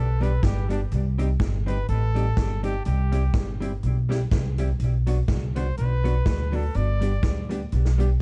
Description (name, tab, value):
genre	ska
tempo	124 BPM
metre	4/4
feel	swing 56% on 8ths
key	unclear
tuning	A4 = 440 Hz
part	warm trumpet	melody	0.0-7.5 s	D4 to D5	-36 LUFS	equal	tape echo
part	upright bass	bass	0.0-8.1 s	G1 to D2	-25 LUFS	equal	none
part	vintage hollow-body jazz guitar	accompaniment	0.2-8.1 s	F#3 to G4	-34 LUFS	equal	tape echo
part	swinging big-band drum kit	drums	0.2-8.1 s	hi-hat, kick drum, snare drum	-29 LUFS	equal	none
room	little or no reverb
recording	dark, warm production, vinyl crackle, nothing above 10.8 kHz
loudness	-24 LUFS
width	mono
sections	0.0-8.2 A section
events	trumpet solo 0.0-8.2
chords	0.0 G; 0.9 Cm; 2.9 C; 4.8 Bm; 6.7 G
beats	0.43 | 0.92 1.40 1.89 2.37 | 2.86 3.34 3.83 4.32 | 4.80 5.29 5.77 6.26 | 6.75 7.23 7.72